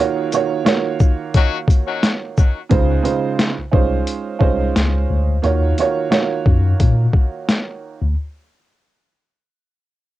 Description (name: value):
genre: hip hop, boom-bap hip-hop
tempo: 88 BPM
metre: 4/4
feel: swing 55% on 16ths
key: Eb dorian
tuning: A4 = 440 Hz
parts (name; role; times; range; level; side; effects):
- warm upright piano; accompaniment; 0.0-8.0 s; Db3 to Db5; -20 LUFS; right 6 dB; cassette tape, high-pass filter, low-pass filter
- boom bap sampler-style drum kit; drums; 0.3-7.7 s; hi-hat, kick drum, shaker, snare drum; -15 LUFS; left 1 dB; overdrive, vintage 12-bit sampler grit, cassette tape
- clear horn section; stabs; 1.4-1.6 s; Gb3 to Gb4; -25 LUFS; left 10 dB; high-pass filter, low-pass filter, cassette tape, analog delay
- mellow tine electric piano; bass; 2.7-8.1 s; C2 to Bb2; -18 LUFS; left 1 dB; medium stereo tremolo, transformer saturation
room: little or no reverb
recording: home recording on cassette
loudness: -15 LUFS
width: side -15 dB against mid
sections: 0.0-2.7 A section; 2.7-8.2 B section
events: break 0.0-2.7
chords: 0.0 Ebm7; 2.7 Dbmaj7; 5.4 Ebm7